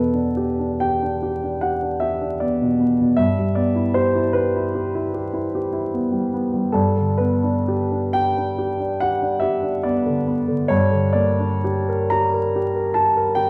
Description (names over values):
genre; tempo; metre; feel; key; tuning
classical, romantic nocturne for solo piano; 40-52 BPM (dotted quarters); 9/8; rubato; unclear; A4 = 435 Hz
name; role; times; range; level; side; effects
warm grand piano; solo; 0.0-13.5 s; E2 to Bb5; -21 LUFS; equal; none
room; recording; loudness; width
wet recital hall reverb, RT60 1.4 s; vinyl crackle; -21 LUFS; mono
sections
0.0-13.5 A section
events
none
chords
0.0 Em7; 3.2 Em/G; 6.8 G; 10.7 Gm